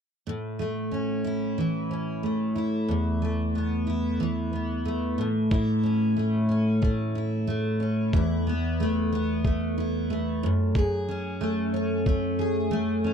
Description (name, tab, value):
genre	acoustic pop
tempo	92 BPM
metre	4/4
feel	swing 55% on 16ths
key	A major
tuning	A4 = 438 Hz
part	picked steel-string acoustic guitar	accompaniment	0.3-13.1 s	E2 to G#4	-24 LUFS	equal	double-tracked left and right
part	electronic kick drum	drums	5.5-12.2 s	none	-24 LUFS	equal	none
room	light reverb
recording	dry, close 1970s-style studio recording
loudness	-24 LUFS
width	side -7 dB against mid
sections	0.3-5.5 A section; 5.5-13.1 B section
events	none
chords	0.3 A; 2.9 Esus4; 5.2 N.C.; 5.5 A; 8.1 Esus4; 10.4 F#madd9